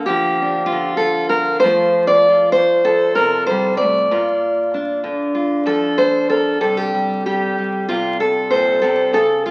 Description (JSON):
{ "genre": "folk, solo fingerstyle acoustic guitar", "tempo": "96 BPM", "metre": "4/4", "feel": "straight", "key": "unclear", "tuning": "A4 = 436 Hz", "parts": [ { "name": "fingerpicked steel-string acoustic guitar", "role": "solo", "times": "0.0-9.5 s", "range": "Bb2 to D5", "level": "-17 LUFS", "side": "equal", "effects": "none" } ], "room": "wet large studio reverb, RT60 1.2 s", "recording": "very old 78 rpm record, vinyl crackle", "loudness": "-17 LUFS", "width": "mono", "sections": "0.0-6.6 A section; 6.6-9.5 B section", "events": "none", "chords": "0.0 Bb/D; 1.6 F; 4.1 Bb; 6.6 Csus2", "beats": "0.39 1.01 | 1.63 2.25 2.87 3.48 | 4.11 4.73 5.35 5.98 | 6.61 7.24 7.87 8.49 | 9.12" }